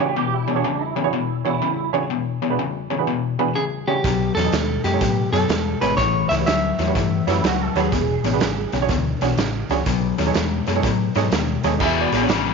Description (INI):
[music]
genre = electric blues shuffle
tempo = 124 BPM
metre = 4/4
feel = swing 66% on 8ths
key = E mixolydian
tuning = A4 = 439 Hz
[part]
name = electric guitar through a small old amp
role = second line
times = 0.0-1.9, 7.3-8.7 s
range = D4 to A4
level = -26 LUFS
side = right 11 dB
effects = ensemble chorus
[part]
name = warm upright piano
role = accompaniment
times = 0.0-12.3 s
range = E3 to E5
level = -25 LUFS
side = right 13 dB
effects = none
[part]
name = overdriven electric guitar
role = riff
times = 0.0-12.5 s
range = E2 to G#3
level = -23 LUFS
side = left 12 dB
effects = none
[part]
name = electric guitar at the edge of break-up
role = melody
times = 3.6-7.7 s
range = G4 to E5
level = -23 LUFS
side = right 1 dB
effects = spring reverb
[part]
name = hollow-body short-scale fingered electric bass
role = bass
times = 4.0-12.5 s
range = E1 to A2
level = -25 LUFS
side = right 1 dB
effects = none
[part]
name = raw garage drum kit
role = drums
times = 4.0-12.4 s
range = crash cymbal, hi-hat, kick drum, snare drum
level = -25 LUFS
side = right 5 dB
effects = none
[sound]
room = light reverb, small room ambience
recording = 1960s-style stereo with parts hard left and right, nothing above 7.5 kHz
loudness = -18 LUFS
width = side -4 dB against mid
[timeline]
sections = 0.0-11.8 A section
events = none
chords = 0.0 E13; 4.0 B13; 6.0 A13; 7.9 E13; 9.9 B13; 11.8 E13